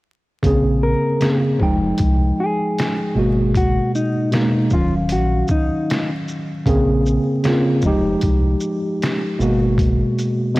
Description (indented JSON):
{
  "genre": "lo-fi hip hop",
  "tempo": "77 BPM",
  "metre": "4/4",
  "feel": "swing 61% on 16ths",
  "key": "Bb minor",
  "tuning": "A4 = 440 Hz",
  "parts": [
    { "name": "mellow tine electric piano", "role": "accompaniment", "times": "0.4-10.6 s", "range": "Cb3 to G5", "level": "-18 LUFS", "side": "equal", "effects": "medium stereo tremolo" },
    { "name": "sub bass with octave", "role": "bass", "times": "0.4-10.0 s", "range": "Eb1 to C2", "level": "-21 LUFS", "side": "equal", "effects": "none" },
    { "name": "trip hop sampler-style drum kit", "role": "drums", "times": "0.4-10.6 s", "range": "hi-hat, kick drum, shaker, snare drum", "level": "-21 LUFS", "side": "equal", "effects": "cassette tape" },
    { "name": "mellow electric guitar", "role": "melody", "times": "0.8-6.1 s", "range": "Eb4 to Bb4", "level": "-24 LUFS", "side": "left 2 dB", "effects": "harmonic tremolo, cassette tape" }
  ],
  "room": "light reverb",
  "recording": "home recording on cassette, vinyl crackle",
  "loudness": "-16 LUFS",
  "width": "side -20 dB against mid",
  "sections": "0.4-10.6 A section",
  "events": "none",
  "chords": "0.4 Bbm9; 1.6 Fm9; 3.2 Abm9; 4.7 Ebm9; 6.7 Bbm9; 7.8 Fm9; 9.4 Abm9"
}